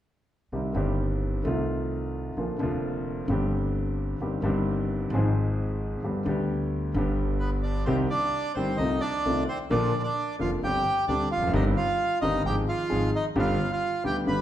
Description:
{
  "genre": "tango",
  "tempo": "131 BPM",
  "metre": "4/4",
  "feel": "rubato",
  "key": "C minor",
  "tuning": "A4 = 440 Hz",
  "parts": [
    { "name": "warm concert grand piano", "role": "accompaniment", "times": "0.5-14.4 s", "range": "F1 to Ab4", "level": "-27 LUFS", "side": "left 1 dB", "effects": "none" },
    { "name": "upright bass", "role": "bass", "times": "0.5-14.4 s", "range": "E1 to D2", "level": "-31 LUFS", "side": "right 1 dB", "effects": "none" },
    { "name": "bandoneon", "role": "melody", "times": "7.4-14.4 s", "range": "B3 to B5", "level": "-27 LUFS", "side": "right 2 dB", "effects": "none" }
  ],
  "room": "wet large studio reverb, RT60 1.1 s",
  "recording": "heard from further back in the room",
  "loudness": "-24 LUFS",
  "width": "side -12 dB against mid",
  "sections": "0.5-7.9 A section; 7.9-14.4 B section",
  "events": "none",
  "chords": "0.5 Cm; 1.4 F7/C; 2.4 Bb; 3.3 Gsus4; 4.2 Cm/G; 5.1 Fm/Ab; 6.0 G; 7.9 Cm; 8.8 F7/C; 9.7 Bb; 10.6 Gsus4; 11.5 Cm/G; 12.4 Fm/Ab; 13.4 G",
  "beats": "| 0.52 0.98 1.44 1.90 | 2.36 2.82 3.28 3.74 | 4.20 4.65 5.11 5.57 | 6.03 6.48 6.94 7.40 | 7.86 8.32 8.78 9.24 | 9.70 10.16 10.61 11.07 | 11.53 11.98 12.44 12.90 | 13.36 13.81 14.27"
}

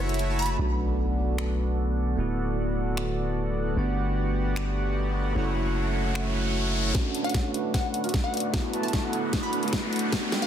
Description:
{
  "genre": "future bass",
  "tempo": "151 BPM",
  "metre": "4/4",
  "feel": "half-time",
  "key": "unclear",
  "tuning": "A4 = 438 Hz",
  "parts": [
    { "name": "ethereal airy pad", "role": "sustained chords", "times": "0.1-10.5 s", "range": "D3 to F#5", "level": "-38 LUFS", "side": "left 1 dB", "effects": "none" },
    { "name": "soft supersaw", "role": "riff", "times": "0.0-10.5 s", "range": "G3 to A5", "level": "-31 LUFS", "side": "right 1 dB", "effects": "cassette tape, sidechain pumping, low-pass filter, tape echo" },
    { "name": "long sustained 808-style bass", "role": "bass", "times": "0.0-10.5 s", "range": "D1 to B1", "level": "-28 LUFS", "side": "equal", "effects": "sidechain pumping, high-pass filter" },
    { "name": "dubstep drum kit", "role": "drums", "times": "0.1-10.5 s", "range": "finger snaps, hi-hat, snare drum", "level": "-32 LUFS", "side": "left 1 dB", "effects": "small room ambience, soft clipping on snare" },
    { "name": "glassy wavetable pluck", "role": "melody", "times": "0.4-0.6, 7.2-10.5 s", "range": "F#5 to B5", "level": "-34 LUFS", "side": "left 1 dB", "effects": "chorus, sidechain pumping, digital delay" },
    { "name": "tine electric piano", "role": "accompaniment", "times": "0.6-10.5 s", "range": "A3 to F#5", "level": "-33 LUFS", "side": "right 2 dB", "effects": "slow stereo tremolo, sidechain pumping, tape echo" },
    { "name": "sub drop and riser", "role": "sound effects", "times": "4.4-10.5 s", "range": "none", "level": "-35 LUFS", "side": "left 1 dB", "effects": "none" },
    { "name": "electronic kick drum", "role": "drums", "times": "6.9-10.2 s", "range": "none", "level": "-28 LUFS", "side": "equal", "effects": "small room ambience" }
  ],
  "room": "light reverb",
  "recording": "dense, heavily limited modern master, high-pass filter",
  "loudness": "-24 LUFS",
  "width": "side -9 dB against mid",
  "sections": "0.6-6.9 A section; 6.9-10.5 B section",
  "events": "kick drops out 0.2-0.6; impact 0.6-2.2; filter sweep on supersaw synth 0.6-6.9, 6.9-10.5; riser 4.8-6.9, 6.9-10.5; build-up 6.9-10.5; drum fill 6.9-10.5",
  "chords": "0.0 F#m7; 0.6 Bm7; 2.2 D6; 3.8 Gmaj7; 5.4 F#m7; 6.9 Bm7; 8.5 D6",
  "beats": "0.19 | 0.59 0.99 1.38 1.78 | 2.18 2.58 2.97 3.37 | 3.77 4.17 4.56 4.96 | 5.36 5.75 6.15 6.55 | 6.95 7.34 7.74 8.14 | 8.54 8.93 9.33 9.73 | 10.13"
}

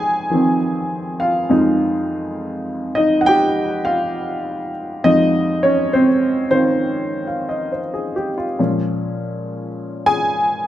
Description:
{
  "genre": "solo jazz",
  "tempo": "68 BPM",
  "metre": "4/4",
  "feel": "swing 66% on 8ths",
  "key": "F minor",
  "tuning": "A4 = 438 Hz",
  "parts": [
    { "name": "warm upright piano", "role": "solo", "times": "0.0-10.7 s", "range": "F2 to Ab5", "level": "-16 LUFS", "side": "equal", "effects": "none" }
  ],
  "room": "wet large studio reverb, RT60 1.1 s",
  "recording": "none",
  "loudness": "-16 LUFS",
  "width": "side -12 dB against mid",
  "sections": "0.0-10.7 A section",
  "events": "none",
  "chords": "0.0 Fm7; 8.6 Bbm7",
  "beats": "0.62 | 1.51 2.39 3.28 4.16 | 5.05 5.93 6.82 7.70 | 8.59 9.47 10.36"
}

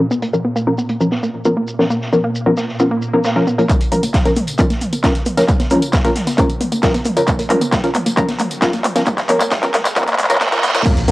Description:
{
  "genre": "driving peak-time techno",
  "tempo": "134 BPM",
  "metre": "4/4",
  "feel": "straight",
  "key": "Bb phrygian",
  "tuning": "A4 = 441 Hz",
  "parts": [
    { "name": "filtered dub chord stab", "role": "stabs", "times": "0.0-11.1 s", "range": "F3 to Bb4", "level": "-18 LUFS", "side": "left 1 dB", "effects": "lush chorus, sidechain pumping, cassette tape, analog delay" },
    { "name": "swarming drone", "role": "drone", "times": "0.0-3.7 s", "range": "Bb2", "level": "-28 LUFS", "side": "equal", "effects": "built-in reverb, sidechain pumping, cassette tape" },
    { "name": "techno drum kit", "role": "drums", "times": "0.0-11.1 s", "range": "crash cymbal, handclaps, hi-hat, tambourine, toms", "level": "-19 LUFS", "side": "equal", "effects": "sidechain pumping on hats, low-pass filter on hats, low-pass filter on snare, sidechain pumping on toms, low-pass filter on toms, sidechain pumping on perc, low-pass filter on perc, sidechain pumping on cymbals, low-pass filter on cymbals" },
    { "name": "analog pluck", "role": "riff", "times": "0.1-11.1 s", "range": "Bb3 to Cb4", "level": "-21 LUFS", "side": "equal", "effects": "chorus, sidechain pumping, cassette tape, analog delay" },
    { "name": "street-band drum kit", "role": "drums", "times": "0.1-11.1 s", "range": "hi-hat, shaker, snare drum", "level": "-27 LUFS", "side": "equal", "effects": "high-pass filter on hats, low-pass filter on hats, high-pass filter on snare, low-pass filter on snare, high-pass filter on perc, low-pass filter on perc, high-pass filter on room, low-pass filter on room" },
    { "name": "swell, riser, reverse cymbal and impact", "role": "sound effects", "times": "3.0-11.1 s", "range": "none", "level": "-28 LUFS", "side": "right 2 dB", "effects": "none" },
    { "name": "electronic kick drum", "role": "drums", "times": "3.7-10.9 s", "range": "none", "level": "-17 LUFS", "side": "equal", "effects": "none" },
    { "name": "saturated sub bass", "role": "bass", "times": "11.0-11.1 s", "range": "Bb1", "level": "-18 LUFS", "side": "equal", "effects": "tube saturation, sidechain pumping, low-pass filter" }
  ],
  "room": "moderate spring reverb, RT60 1.6 s",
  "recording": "home recording on cassette, high-pass filter",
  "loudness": "-14 LUFS",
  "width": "side -18 dB against mid",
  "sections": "0.0-3.7 A section; 3.7-10.9 B section",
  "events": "filter sweep on synth arpeggio sound 0.0-3.7, 3.7-10.9; filter sweep on synth stab 0.0-3.7; build-up 3.7-10.9; drum fill 3.7-10.9; filter sweep 3.7-10.9; reverse cymbal 10.0-10.9; impact 10.9",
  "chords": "0.0 Bbm",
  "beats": "| 0.11 0.56 1.01 1.46 | 1.90 2.35 2.80 3.25 | 3.69 4.14 4.59 5.04 | 5.49 5.93 6.38 6.83 | 7.28 7.72 8.17 8.62 | 9.07 9.52 9.96 10.41 | 10.86"
}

